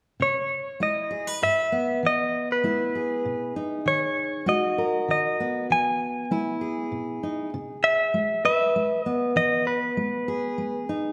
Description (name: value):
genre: folk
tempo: 98 BPM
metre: 3/4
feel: straight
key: unclear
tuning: A4 = 435 Hz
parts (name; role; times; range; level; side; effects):
- direct-recorded clean electric guitar; melody; 0.2-10.8 s; B4 to G#5; -26 LUFS; equal; harmonic tremolo
- fingerpicked steel-string acoustic guitar; accompaniment; 0.2-11.1 s; G#2 to B4; -30 LUFS; equal; none
room: moderate recital hall reverb, RT60 1.8 s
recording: recorded in a church or concert hall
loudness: -25 LUFS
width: mono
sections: 0.2-7.5 A section; 7.5-11.1 B section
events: none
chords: 0.2 C#m7; 2.0 Emaj7; 3.9 G#m9/D#; 5.7 Emaj7; 7.5 C#m7; 9.3 Emaj7